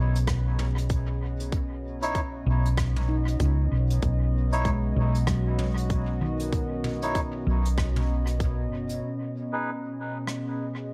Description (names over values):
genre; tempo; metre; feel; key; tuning
ambient dub; 96 BPM; 4/4; swing 60% on 16ths; unclear; A4 = 438 Hz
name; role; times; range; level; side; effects
warbly tape-like pad; sustained chords; 0.0-10.9 s; B2 to D#5; -36 LUFS; equal; chorus, built-in reverb
handpan; arpeggios; 0.0-8.8 s; D#3 to B4; -37 LUFS; equal; dub echo
hollow-body short-scale fingered electric bass; bass; 0.0-9.0 s; F#1 to C#2; -28 LUFS; equal; none
jazz brush drum kit; drums; 0.2-10.4 s; hi-hat, rim click, toms; -40 LUFS; equal; dub echo
electronic kick drum; drums; 0.3-8.6 s; none; -31 LUFS; equal; none
melodica; stabs; 2.0-9.7 s; D#4 to C#5; -36 LUFS; equal; low-pass filter, dub echo
room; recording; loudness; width
light reverb, small room reverb; echo-heavy mix; -27 LUFS; mono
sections
0.0-9.0 A section; 9.0-10.9 B section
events
none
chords
0.0 C#sus2/B; 9.0 B6